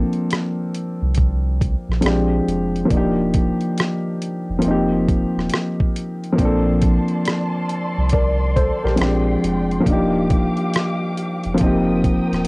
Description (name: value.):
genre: lo-fi hip hop.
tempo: 69 BPM.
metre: 4/4.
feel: swing 65% on 16ths.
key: Bb major.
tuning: A4 = 440 Hz.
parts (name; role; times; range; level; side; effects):
dark upright piano; accompaniment; 0.0-12.5 s; F3 to D5; -19 LUFS; equal; cassette tape, low-pass filter.
soft dub sub bass; bass; 0.0-12.4 s; Eb1 to C2; -22 LUFS; equal; tube saturation.
dusty soul sampler-style drum kit; drums; 0.1-12.5 s; hi-hat, kick drum, rim click; -20 LUFS; equal; cassette tape.
warm studio string section; sustained chords; 6.4-12.5 s; Ab3 to Eb6; -28 LUFS; equal; low-pass filter, cassette tape.
room: moderate booth ambience, RT60 0.2 s.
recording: home recording on cassette.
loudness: -17 LUFS.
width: side -26 dB against mid.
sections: 0.0-12.5 A section.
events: none.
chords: 0.0 Bbmaj9; 2.0 Bb13; 2.9 Ebmaj9; 4.6 F9sus4; 6.4 Bbmaj9; 9.0 Bb13; 9.9 Ebmaj9; 11.6 F9sus4.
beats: 0.30 1.17 2.04 | 2.91 3.78 4.65 5.52 | 6.39 7.26 8.12 8.99 | 9.86 10.73 11.60 12.47.